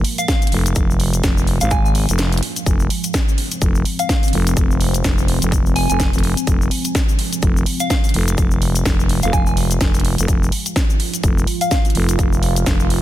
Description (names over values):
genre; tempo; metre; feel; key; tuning
bass house; 126 BPM; 4/4; swing 58% on 16ths; F minor; A4 = 440 Hz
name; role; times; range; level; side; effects
sweeping resonant pad; sustained chords; 0.0-13.0 s; F3 to F4; -27 LUFS; equal; chorus, vintage 12-bit sampler grit, sidechain pumping
growling FM bass; bass; 0.0-13.0 s; F1 to Ab1; -18 LUFS; equal; tube saturation, sidechain pumping
house drum kit; drums; 0.0-13.0 s; hi-hat, snare drum; -24 LUFS; right 1 dB; overdrive
soft synth bell; melody; 0.2-11.8 s; F5 to Ab5; -25 LUFS; equal; chorus, phaser, digital delay
cabasa; percussion; 0.2-12.9 s; none; -28 LUFS; left 6 dB; none
electronic kick drum; drums; 0.3-12.8 s; none; -18 LUFS; equal; none
room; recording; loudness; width
little or no reverb; dense, heavily limited modern master; -15 LUFS; side -14 dB against mid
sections
0.0-13.0 A section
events
break 2.2-2.7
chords
0.0 Fm